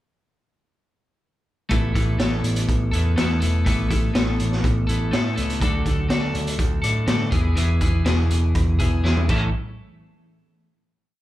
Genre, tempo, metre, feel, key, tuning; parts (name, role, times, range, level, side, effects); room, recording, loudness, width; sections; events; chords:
quiet-loud alternative rock; 123 BPM; 4/4; straight; A4 = 441 Hz
twelve-string electric guitar; arpeggios; 1.7-9.5 s; A2 to A4; -25 LUFS; left 2 dB; slapback echo
overdriven picked electric bass; bass; 1.7-9.5 s; E1 to A2; -22 LUFS; equal
raw garage drum kit; drums; 1.7-9.4 s; crash cymbal, hi-hat, kick drum, snare drum, toms; -23 LUFS; equal
small room ambience; live gig heard through the venue's PA, club reverb; -19 LUFS; side -15 dB against mid
1.7-9.5 verse; 9.5-11.2 final hit
drum fill 9.0-9.5
1.7 Asus2; 5.6 D; 7.3 E; 9.3 A; 9.5 N.C.